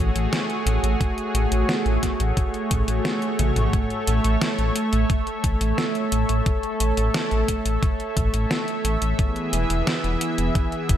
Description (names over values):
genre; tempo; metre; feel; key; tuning
synthwave; 88 BPM; 4/4; straight; A major; A4 = 438 Hz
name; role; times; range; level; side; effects
lush unison pad; sustained chords; 0.0-11.0 s; E3 to E5; -24 LUFS; right 1 dB; chorus, vintage 12-bit sampler grit, sidechain pumping
dark detuned saw bass; bass; 0.0-11.0 s; E1 to A1; -22 LUFS; equal; none
detuned 8-bit digital drum machine; drums; 0.2-11.0 s; hi-hat, snare drum, toms; -27 LUFS; left 1 dB; none
electronic kick drum; drums; 1.0-11.0 s; none; -23 LUFS; equal; none
room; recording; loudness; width
light reverb; none; -20 LUFS; side -10 dB against mid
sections
0.0-11.0 A section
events
drum fill 3.4-3.7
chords
0.0 F#madd9/A; 3.7 A; 9.2 E